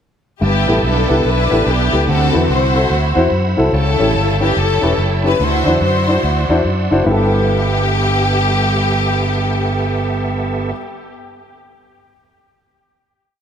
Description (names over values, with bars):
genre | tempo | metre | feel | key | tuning
uptempo gospel | 144 BPM | 4/4 | swing 64% on 8ths | G major | A4 = 442 Hz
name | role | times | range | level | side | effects
warm symphonic string section | melody | 0.4-10.7 s | B3 to C5 | -18 LUFS | left 2 dB | tape echo
dark upright piano | accompaniment | 0.4-10.8 s | G2 to C5 | -18 LUFS | left 1 dB | none
bright tonewheel organ | sustained chords | 0.4-10.7 s | B3 to E6 | -23 LUFS | right 4 dB | overdrive, chorus vibrato, stopped rotary speaker
fingered electric bass | bass | 0.4-10.7 s | E1 to F#2 | -17 LUFS | right 1 dB | none
room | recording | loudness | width
moderate concert hall reverb, RT60 2.4 s | none | -13 LUFS | side -8 dB against mid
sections
0.4-7.1 breakdown; 7.1-10.4 final chord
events
none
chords
0.4 G69; 2.1 D13; 3.7 A7; 5.4 D9; 7.1 G69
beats
| 0.42 0.84 1.25 1.66 | 2.08 2.49 2.91 3.32 | 3.73 4.15 4.57 4.98 | 5.40 5.81 6.23 6.65 | 7.07 7.48 7.90 8.32 | 8.74 9.16 9.57 9.99